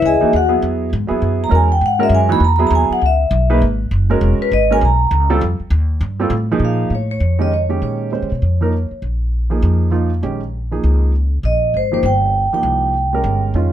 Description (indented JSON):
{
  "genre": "modal jazz",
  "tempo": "199 BPM",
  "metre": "4/4",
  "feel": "swing 61% on 8ths",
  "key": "C# dorian, Bb dorian from 6.6 s",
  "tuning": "A4 = 438 Hz",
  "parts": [
    { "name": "vibraphone with medium mallets", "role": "melody", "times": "0.0-8.9, 11.5-13.4 s", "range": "F#4 to B5", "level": "-17 LUFS", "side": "equal", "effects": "none" },
    { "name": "upright bass", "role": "bass", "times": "0.0-13.7 s", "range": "E1 to Db3", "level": "-16 LUFS", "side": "equal", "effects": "none" },
    { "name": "warm baby grand piano", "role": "accompaniment", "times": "0.2-13.7 s", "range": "Eb3 to C5", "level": "-20 LUFS", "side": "right 3 dB", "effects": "none" }
  ],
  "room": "light reverb",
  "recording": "none",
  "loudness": "-14 LUFS",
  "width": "side -10 dB against mid",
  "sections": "0.0-6.6 A section; 6.6-13.7 B section",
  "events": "vibraphone solo 0.0-6.6",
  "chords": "0.0 C#m9; 5.4 F7; 6.6 Bbm7; 11.4 Cm",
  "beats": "0.02 0.32 | 0.62 0.92 1.22 1.52 | 1.82 2.12 2.42 2.72 | 3.02 3.32 3.62 3.92 | 4.22 4.52 4.82 5.12 | 5.42 5.72 6.02 6.32 | 6.62 6.92 7.22 7.52 | 7.82 8.12 8.43 8.73 | 9.03 9.33 9.63 9.93 | 10.23 10.54 10.84 11.14 | 11.44 11.74 12.04 12.34 | 12.64 12.95 13.25 13.55"
}